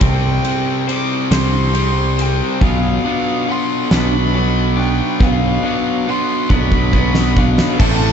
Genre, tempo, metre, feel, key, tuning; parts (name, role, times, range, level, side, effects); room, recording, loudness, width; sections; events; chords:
post-rock; 46 BPM (dotted quarters); 6/8; straight; A4 = 441 Hz
rich violin; melody; 0.0-8.1 s; F5 to D6; -23 LUFS; right 2 dB; analog delay
pedal steel guitar; sustained chords; 0.0-8.1 s; B3 to A5; -32 LUFS; left 2 dB
twelve-string electric guitar; arpeggios; 0.0-8.1 s; A2 to C5; -24 LUFS; left 3 dB; analog delay
distorted electric guitar; riff; 0.0-8.1 s; A2 to C4; -21 LUFS; left 13 dB; overdrive
raw garage guitar; riff; 0.0-8.1 s; A2 to C4; -23 LUFS; right 14 dB; overdrive
overdriven picked electric bass; bass; 0.0-8.1 s; A1 to C2; -17 LUFS; right 1 dB
huge arena drum kit; drums; 0.0-8.0 s; crash cymbal, kick drum, ride cymbal, snare drum; -18 LUFS; right 1 dB
light reverb, studio ambience; dark, warm production, nothing above 7.9 kHz; -13 LUFS; side -8 dB against mid
0.0-7.8 A section
build-up 0.0-7.8; drum fill 6.5-7.8
0.0 C; 2.6 Bdim